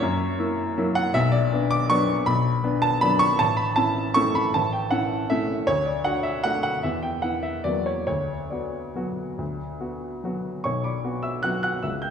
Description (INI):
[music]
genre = classical, piano waltz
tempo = 133-168 BPM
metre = 3/4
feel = rubato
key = B minor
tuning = A4 = 439 Hz
[part]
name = warm baby grand piano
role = solo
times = 0.0-12.1 s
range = A1 to G6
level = -22 LUFS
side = equal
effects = none
[sound]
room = wet recital hall reverb, RT60 1.7 s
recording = recorded in a church or concert hall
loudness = -22 LUFS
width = side -7 dB against mid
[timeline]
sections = 0.0-10.7 A section; 10.7-12.1 B section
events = none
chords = 0.0 F#7; 1.1 Bm; 3.4 A; 5.7 D; 6.8 E5; 7.6 F#7/E; 8.1 Bm/D; 10.7 Bm